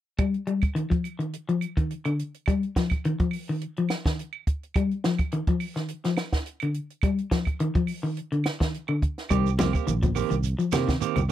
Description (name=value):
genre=afrobeat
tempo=105 BPM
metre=4/4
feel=swing 54% on 16ths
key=unclear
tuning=A4 = 440 Hz
part: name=semi-hollow electric guitar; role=arpeggios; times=0.2-11.2 s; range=D3 to G3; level=-27 LUFS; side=left 3 dB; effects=none
part: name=compact cocktail drum kit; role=drums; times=0.2-11.3 s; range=hi-hat, kick drum, snare drum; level=-26 LUFS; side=right 1 dB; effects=none
part: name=claves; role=percussion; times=0.2-11.3 s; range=none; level=-37 LUFS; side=right 14 dB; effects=none
part: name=clean electric guitar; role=stabs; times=9.3-11.3 s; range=Eb3 to G4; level=-28 LUFS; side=right 16 dB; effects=none
part: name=fingered electric bass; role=bass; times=9.3-11.3 s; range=Bb1 to C3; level=-26 LUFS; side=right 1 dB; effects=none
part: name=shekere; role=percussion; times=9.3-11.3 s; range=none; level=-36 LUFS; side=right 10 dB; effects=none
part: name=congas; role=percussion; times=9.6-11.3 s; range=none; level=-28 LUFS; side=equal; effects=none
room=little or no reverb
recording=dry, close 1970s-style studio recording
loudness=-24 LUFS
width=side -12 dB against mid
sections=0.2-11.3 A section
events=none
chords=0.2 Dmadd11; 9.3 Cm7